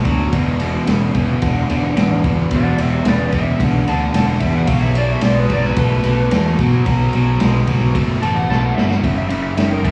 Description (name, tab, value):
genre	blues rock power trio and southern rock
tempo	110 BPM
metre	4/4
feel	straight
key	B minor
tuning	A4 = 438 Hz
part	crunchy overdriven guitar	riff	0.0-9.9 s	E2 to A3	-22 LUFS	equal	slapback echo
part	vintage drum kit	drums	0.0-9.9 s	kick drum, ride cymbal, snare drum	-23 LUFS	equal	none
part	growling fingered electric bass	bass	0.1-9.9 s	E1 to B2	-20 LUFS	equal	overdrive
part	overdriven slide guitar	melody	2.6-9.9 s	G4 to A5	-25 LUFS	equal	slapback echo
room	small room ambience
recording	live gig heard through the venue's PA, club reverb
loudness	-16 LUFS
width	mono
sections	0.0-9.9 A section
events	drum fill 8.5-9.0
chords	0.3 E7(no3); 4.7 B5; 9.0 F#7(no3)